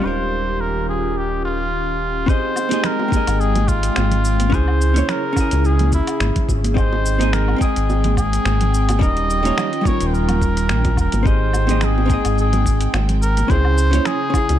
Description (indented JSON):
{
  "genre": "sunset chillout",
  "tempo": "107 BPM",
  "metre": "4/4",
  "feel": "swing 55% on 16ths",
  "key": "Ab major",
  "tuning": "A4 = 439 Hz",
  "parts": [
    { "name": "trumpet with cup mute", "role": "melody", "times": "0.0-14.6 s", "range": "Fb4 to Eb5", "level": "-23 LUFS", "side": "equal", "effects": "ping-pong delay" },
    { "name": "vintage hollow-body jazz guitar", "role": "accompaniment", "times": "0.0-14.6 s", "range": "G3 to G5", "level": "-23 LUFS", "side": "moving between left 4 dB and right 3 dB", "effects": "auto-pan" },
    { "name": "airy breathy pad", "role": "sustained chords", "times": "0.0-14.6 s", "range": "Db3 to G5", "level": "-26 LUFS", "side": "left 1 dB", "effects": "chorus" },
    { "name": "round analog bass", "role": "bass", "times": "0.0-14.6 s", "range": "Eb1 to Db2", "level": "-19 LUFS", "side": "equal", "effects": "none" },
    { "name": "dusty soul sampler-style drum kit", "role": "drums", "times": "2.3-14.6 s", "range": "finger snaps, hi-hat, shaker, woodblock", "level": "-28 LUFS", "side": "left 1 dB", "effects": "low-pass filter on perc, studio reverb, low-pass filter on hats, low-pass filter on snare" },
    { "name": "electronic kick drum", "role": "drums", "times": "2.3-14.5 s", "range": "none", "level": "-19 LUFS", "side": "equal", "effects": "studio reverb" },
    { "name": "bongos and congas", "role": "percussion", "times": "2.6-14.6 s", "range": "none", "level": "-28 LUFS", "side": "right 3 dB", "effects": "none" }
  ],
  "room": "light reverb",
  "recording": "dark, warm production",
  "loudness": "-16 LUFS",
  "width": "side -11 dB against mid",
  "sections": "0.0-2.3 A section; 2.3-14.6 B section",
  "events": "filter sweep on analog synth pad 0.0-2.3",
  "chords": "0.0 Eb9; 2.3 Abmaj7; 4.5 Dbm; 6.8 Abmaj7; 9.0 Eb9; 11.3 Abmaj7; 13.5 Dbm",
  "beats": "| 0.04 0.60 1.16 1.72 | 2.28 2.85 3.40 3.97 | 4.53 5.09 5.65 6.21 | 6.77 7.33 7.89 8.45 | 9.01 9.57 10.13 10.70 | 11.26 11.82 12.38 12.94 | 13.50 14.06"
}